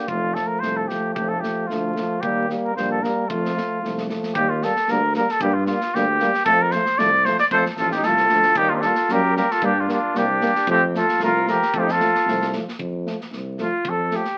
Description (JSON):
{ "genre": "balkan folk, Balkan brass band", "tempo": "114 BPM", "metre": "2/4", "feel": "swing 53% on 16ths", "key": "F mixolydian", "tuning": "A4 = 440 Hz", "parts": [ { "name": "cornet with straight mute", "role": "melody", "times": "0.0-12.5 s", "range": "Eb4 to D5", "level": "-22 LUFS", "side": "equal", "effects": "none" }, { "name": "mellow euphonium", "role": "accompaniment", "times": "0.0-14.2 s", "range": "F3 to G3", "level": "-33 LUFS", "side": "equal", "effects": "none" }, { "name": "mellow trombone", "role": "accompaniment", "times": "0.0-14.2 s", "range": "A3 to Bb3", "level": "-30 LUFS", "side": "equal", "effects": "none" }, { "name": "mellow tuba", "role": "bass", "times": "0.1-14.2 s", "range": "F1 to G2", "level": "-30 LUFS", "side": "equal", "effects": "none" }, { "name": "tight metal drum kit", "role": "percussion", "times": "0.1-14.3 s", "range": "kick drum, snare drum", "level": "-36 LUFS", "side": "equal", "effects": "none" }, { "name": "mellow trumpet", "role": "second line", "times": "7.5-14.4 s", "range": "C4 to A4", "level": "-27 LUFS", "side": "equal", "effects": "none" } ], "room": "moderate studio reverb, RT60 0.8 s", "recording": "very old 78 rpm record, vinyl crackle", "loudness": "-21 LUFS", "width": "mono", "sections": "0.0-4.4 A section; 4.4-12.8 B section; 12.8-14.4 C section", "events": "trumpet solo 12.8-14.4", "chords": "0.1 F; 2.2 Eb; 3.3 F; 4.4 Eb; 5.4 Gm; 6.5 F; 8.6 Eb; 9.6 Gm; 10.7 F" }